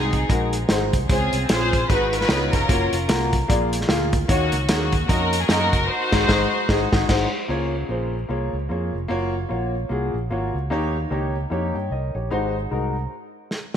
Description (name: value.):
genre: uptempo gospel.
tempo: 150 BPM.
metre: 4/4.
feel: swing 59% on 8ths.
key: Db major.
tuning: A4 = 438 Hz.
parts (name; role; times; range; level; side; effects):
warm studio string section; melody; 0.0-7.1 s; Bb3 to C5; -24 LUFS; left 1 dB; ping-pong delay.
warm upright piano; accompaniment; 0.0-13.0 s; Ab2 to G5; -24 LUFS; left 2 dB; lush chorus.
fingered electric bass; bass; 0.0-13.1 s; F1 to G2; -26 LUFS; right 1 dB; none.
warm soul drum kit; drums; 0.1-7.2, 13.5-13.8 s; crash cymbal, hi-hat, kick drum, snare drum; -22 LUFS; right 1 dB; none.
room: moderate lush hall reverb, RT60 2.1 s.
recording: bright 1980s-style digital production.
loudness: -19 LUFS.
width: side -9 dB against mid.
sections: 0.0-7.5 A section; 7.5-13.8 B section.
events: band accent 5.9-7.5; stop 13.1-13.8; drum fill 13.5.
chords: 0.0 Ab7; 1.1 Dbmaj7; 1.9 Abm7; 2.3 Db9; 2.7 Gbmaj7; 3.5 Bb7; 4.3 Ebm7; 5.9 Ab7; 7.5 Db6; 9.1 Gbmaj7; 10.7 Eb7; 12.3 Ab7.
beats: 0.29 0.69 | 1.09 1.49 1.89 2.29 | 2.69 3.09 3.49 3.89 | 4.29 4.69 5.09 5.49 | 5.89 6.29 6.69 7.09 | 7.50 7.90 8.30 8.70 | 9.10 9.50 9.90 10.30 | 10.71 11.11 11.51 11.91 | 12.31 12.71 13.11 13.51.